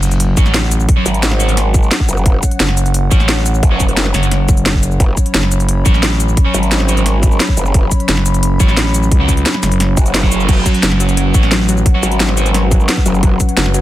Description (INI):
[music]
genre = dark technical drum and bass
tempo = 175 BPM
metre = 4/4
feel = straight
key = F# minor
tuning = A4 = 440 Hz
[part]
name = dark analog pad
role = sustained chords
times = 0.0-13.8 s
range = F#3 to B5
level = -21 LUFS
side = left 1 dB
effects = chorus, sidechain pumping
[part]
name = growling FM bass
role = bass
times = 0.0-13.8 s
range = F#1 to C#2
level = -14 LUFS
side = equal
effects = none
[part]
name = drum and bass drum kit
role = drums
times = 0.0-13.8 s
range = cabasa, crash cymbal, hi-hat, snare drum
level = -17 LUFS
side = equal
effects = none
[part]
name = impact and swell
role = sound effects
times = 0.0-0.9, 9.9-10.5 s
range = none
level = -29 LUFS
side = equal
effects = none
[part]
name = fuzz guitar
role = stabs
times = 0.4-12.5 s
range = F#3 to C#5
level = -21 LUFS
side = right 3 dB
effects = distortion, dub echo
[part]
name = electronic kick drum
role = drums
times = 0.4-13.5 s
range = none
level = -12 LUFS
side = equal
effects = none
[part]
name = growl bass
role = bass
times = 1.1-7.9, 10.0-13.4 s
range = F#1 to G#1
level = -15 LUFS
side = equal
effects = chorus, overdrive
[part]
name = wide unison pluck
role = arpeggios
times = 10.5-13.8 s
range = F#3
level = -21 LUFS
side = left 2 dB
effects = sidechain pumping, dub echo
[sound]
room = digital ambience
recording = dense, heavily limited modern master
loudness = -10 LUFS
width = side -14 dB against mid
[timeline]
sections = 0.0-13.8 A section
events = impact 0.0-0.9; swell 9.9-10.5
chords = 0.0 F#5